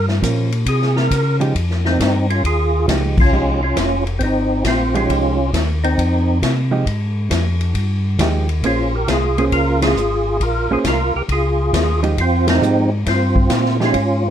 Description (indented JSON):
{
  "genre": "soul jazz organ trio",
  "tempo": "136 BPM",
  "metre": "4/4",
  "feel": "swing 67% on 8ths",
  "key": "F minor",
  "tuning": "A4 = 437 Hz",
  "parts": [
    { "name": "percussive tonewheel organ", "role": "melody", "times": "0.0-14.3 s", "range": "C4 to Bb4", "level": "-18 LUFS", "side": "right 1 dB", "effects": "slow rotary speaker, overdrive, chorus vibrato" },
    { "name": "mellow tonewheel organ", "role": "bass", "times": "0.0-14.3 s", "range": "F1 to Db3", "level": "-19 LUFS", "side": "equal", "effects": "slow rotary speaker" },
    { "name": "swinging big-band drum kit", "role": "drums", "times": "0.1-14.1 s", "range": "crash cymbal, hi-hat, kick drum, ride cymbal, snare drum", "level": "-22 LUFS", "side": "left 1 dB", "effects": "none" },
    { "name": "hollow-body jazz guitar", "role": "accompaniment", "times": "0.2-13.9 s", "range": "F3 to C5", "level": "-21 LUFS", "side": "right 4 dB", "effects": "none" }
  ],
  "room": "light reverb",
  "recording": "dark, warm production",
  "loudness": "-15 LUFS",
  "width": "side -10 dB against mid",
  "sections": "0.0-1.6 A section; 1.6-14.3 B section",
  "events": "tonewheel organ solo 0.0-1.6; band accent 3.1, 9.7, 12.4",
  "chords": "0.0 Gm7b5; 0.7 C5; 1.6 Fm9; 8.6 Bbm9; 12.2 Fm9"
}